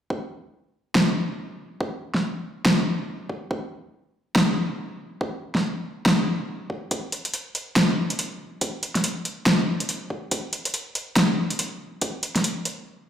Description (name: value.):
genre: deep dubstep.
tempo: 141 BPM.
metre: 4/4.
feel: swing 60% on 16ths, half-time.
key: none.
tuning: none.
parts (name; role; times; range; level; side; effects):
electronic kick drum; drums; 0.1-12.1 s; none; -29 LUFS; equal; high-pass filter on kick, small room ambience.
deep house drum kit; drums; 1.0-12.8 s; hi-hat, snare drum; -22 LUFS; equal; small room ambience.
room: wet echo chamber reverb, RT60 1.5 s, digital ambience.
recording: played on a big sound system in a bare room, large studio reverb.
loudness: -23 LUFS.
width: side -9 dB against mid.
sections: 0.1-13.1 A section.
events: stop 12.9.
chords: none.